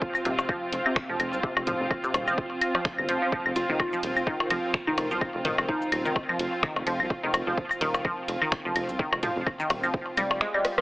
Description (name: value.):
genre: minimal techno.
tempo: 127 BPM.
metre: 4/4.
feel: swing 56% on 16ths.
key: unclear.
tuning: A4 = 441 Hz.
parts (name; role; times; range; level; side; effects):
electronic kick drum; drums; 0.0-10.0 s; none; -30 LUFS; equal; overdrive, studio reverb.
dark studio string section; texture; 0.0-10.8 s; C4 to F5; -32 LUFS; equal; sidechain pumping.
pulsing gated texture; texture; 0.0-10.8 s; F4; -38 LUFS; right 2 dB; none.
punchy analog drum machine; drums; 0.1-10.8 s; finger snaps, hi-hat, ride cymbal, rim click, shaker; -31 LUFS; equal; overdrive, studio reverb.
electronic claves, percussion blips and toms; percussion; 0.1-10.6 s; none; -27 LUFS; left 1 dB; studio reverb, digital delay.
resonant blip pluck; riff; 0.3-10.8 s; C3 to Ab3; -30 LUFS; equal; phaser, sidechain pumping, digital delay.
rubbery square bass; bass; 0.3-10.4 s; Eb1 to C2; -35 LUFS; equal; sidechain pumping.
soft struck synth lead; melody; 3.6-6.1 s; Eb4 to F4; -32 LUFS; equal; chorus, digital delay.
room: moderate small room reverb, RT60 0.5 s.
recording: heavily compressed radio sound, multiband compression, AM radio sound.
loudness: -24 LUFS.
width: side -19 dB against mid.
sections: 0.0-10.8 A section.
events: kick drops out 10.4-10.8; drum fill 10.6.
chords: 0.0 F5.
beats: 0.02 0.49 0.96 | 1.43 1.91 2.38 2.85 | 3.32 3.80 4.27 4.74 | 5.21 5.69 6.16 6.63 | 7.10 7.58 8.05 8.52 | 8.99 9.47 9.94 10.41.